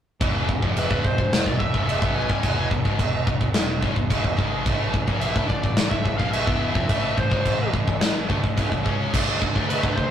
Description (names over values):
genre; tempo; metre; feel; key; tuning
heavy metal; 108 BPM; 4/4; straight; E phrygian dominant; A4 = 440 Hz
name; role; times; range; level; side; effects
scooped high-gain guitar; riff; 0.2-10.1 s; E2 to E4; -32 LUFS; right 4 dB; distortion
thick fuzz guitar; riff; 0.2-10.1 s; E2 to E4; -33 LUFS; equal; none
tight distorted guitar; riff; 0.2-10.1 s; E2 to E4; -32 LUFS; left 6 dB; distortion
modern bright picked electric bass; bass; 0.2-10.1 s; E1 to F2; -31 LUFS; equal; none
big rock drum kit; drums; 0.2-10.1 s; china cymbal, crash cymbal, kick drum, snare drum; -22 LUFS; equal; none
bluesy overdriven lead guitar; melody; 0.8-10.1 s; B4 to G#5; -28 LUFS; left 1 dB; distortion
room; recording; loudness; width
light reverb; rough rehearsal-room recording, tube saturation; -20 LUFS; side -9 dB against mid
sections
0.2-10.1 A section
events
none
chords
0.2 E; 4.7 A5; 9.1 D5